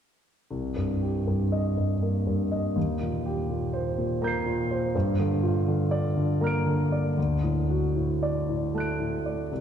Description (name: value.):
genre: neoclassical minimalist piano.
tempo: 76-84 BPM.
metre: 3/4.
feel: rubato.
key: C minor.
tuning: A4 = 440 Hz.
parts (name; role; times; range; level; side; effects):
warm concert grand piano; solo; 0.5-9.6 s; C2 to D7; -24 LUFS; equal; none.
room: wet church reverb, RT60 2.9 s.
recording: recorded in a church or concert hall.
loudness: -24 LUFS.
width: side -8 dB against mid.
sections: 0.5-9.6 A section.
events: none.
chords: 0.5 Cm7; 2.8 Eb6; 4.9 Gm7; 7.2 D.